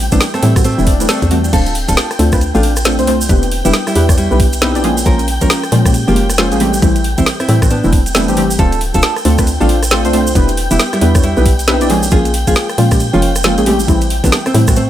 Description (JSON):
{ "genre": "UK garage, two-step garage", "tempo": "136 BPM", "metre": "4/4", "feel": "swing 61% on 16ths", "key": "D dorian", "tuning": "A4 = 440 Hz", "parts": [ { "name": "soft string machine", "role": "sustained chords", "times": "0.0-14.9 s", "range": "G5", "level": "-24 LUFS", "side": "left 1 dB", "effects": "ensemble chorus, sidechain pumping" }, { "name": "hollow knocking FM bass", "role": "bass", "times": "0.0-14.9 s", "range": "D1 to Bb2", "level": "-15 LUFS", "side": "equal", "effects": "none" }, { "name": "nylon-string guitar", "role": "melody", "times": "0.1-14.9 s", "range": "G3 to Bb4", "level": "-20 LUFS", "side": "right 1 dB", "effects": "dub echo" }, { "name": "deep mellow chord stab", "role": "stabs", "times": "0.1-14.8 s", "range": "E3 to D5", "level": "-16 LUFS", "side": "equal", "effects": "chorus, dub echo" }, { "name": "electronic kick drum", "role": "drums", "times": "0.1-14.7 s", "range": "none", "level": "-13 LUFS", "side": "equal", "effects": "none" }, { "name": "garage drum kit", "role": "drums", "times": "0.1-14.9 s", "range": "crash cymbal, hi-hat, rim click, snare drum", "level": "-18 LUFS", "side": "equal", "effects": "none" }, { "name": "tube shaker", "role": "percussion", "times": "0.1-14.9 s", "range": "none", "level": "-24 LUFS", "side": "right 4 dB", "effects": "none" }, { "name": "swell", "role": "sound effects", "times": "0.8-1.5 s", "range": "none", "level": "-25 LUFS", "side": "left 4 dB", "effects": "none" } ], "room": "light reverb", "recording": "none", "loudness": "-10 LUFS", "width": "side -12 dB against mid", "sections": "0.0-14.9 A section", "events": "swell 0.8-1.5", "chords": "0.0 Am7; 1.5 Dm7; 3.3 Em7; 4.8 Bbm7; 6.6 Am7; 8.6 Dm7; 10.4 Em7; 11.9 Bbm7; 13.7 Am7", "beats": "0.21 0.65 1.09 | 1.53 1.97 2.41 2.85 | 3.29 3.74 4.18 4.62 | 5.06 5.50 5.94 6.38 | 6.83 7.27 7.71 8.15 | 8.59 9.03 9.47 9.91 | 10.35 10.79 11.24 11.68 | 12.12 12.56 13.00 13.44 | 13.88 14.32 14.77" }